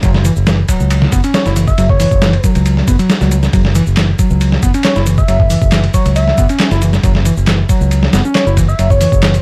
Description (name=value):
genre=breakbeat, breaks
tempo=137 BPM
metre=4/4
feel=straight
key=unclear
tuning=A4 = 440 Hz
part: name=growling picked electric bass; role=riff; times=0.0-9.3 s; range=E3 to E4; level=-19 LUFS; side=equal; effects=overdrive, tube saturation, low-pass filter
part: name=modern bright fingered electric bass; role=bass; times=0.0-9.4 s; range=F#1 to C#2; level=-16 LUFS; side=equal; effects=none
part: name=dusty soul sampler-style drum kit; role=drums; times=0.0-9.4 s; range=hi-hat, kick drum, ride cymbal, snare drum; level=-16 LUFS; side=equal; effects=overdrive
part: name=electronic shaker and handclaps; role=drums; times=0.0-9.4 s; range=none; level=-28 LUFS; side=equal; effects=none
part: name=soft struck synth lead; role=melody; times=1.3-9.4 s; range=C#5 to E5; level=-22 LUFS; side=equal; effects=chorus, telephone sound, dub echo
room=little or no reverb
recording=vinyl crackle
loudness=-12 LUFS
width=mono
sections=0.0-9.4 A section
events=none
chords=0.0 F#5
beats=| 0.03 0.47 0.91 1.34 | 1.78 2.22 2.66 3.10 | 3.53 3.97 4.41 4.85 | 5.29 5.72 6.16 6.60 | 7.04 7.48 7.91 8.35 | 8.79 9.23